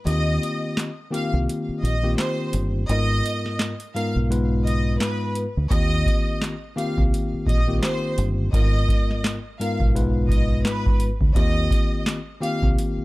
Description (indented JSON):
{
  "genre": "hip hop, boom-bap hip-hop",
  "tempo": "85 BPM",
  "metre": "4/4",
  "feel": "swing 60% on 16ths",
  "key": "Eb major",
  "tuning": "A4 = 437 Hz",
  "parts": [
    { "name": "tine electric piano", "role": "accompaniment", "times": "0.0-13.0 s", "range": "Ab2 to Cb5", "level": "-26 LUFS", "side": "left 2 dB", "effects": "none" },
    { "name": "clear studio violin section", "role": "melody", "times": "0.1-12.6 s", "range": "Cb5 to F5", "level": "-29 LUFS", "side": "equal", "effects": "none" },
    { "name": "deep dub fingered electric bass", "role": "bass", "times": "0.1-13.0 s", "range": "G1 to Eb2", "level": "-23 LUFS", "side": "equal", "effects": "none" },
    { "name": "booming analog drum machine", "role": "drums", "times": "0.1-13.0 s", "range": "handclaps, hi-hat, kick drum, snare drum", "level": "-22 LUFS", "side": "equal", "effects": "none" }
  ],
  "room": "digital ambience",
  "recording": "dark, warm production",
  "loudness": "-20 LUFS",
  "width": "side -20 dB against mid",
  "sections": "0.0-13.0 A section",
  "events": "break 0.0-5.7",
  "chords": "0.1 Eb69; 2.9 Abm6; 5.7 Eb69; 8.5 Abm6; 11.4 Eb69"
}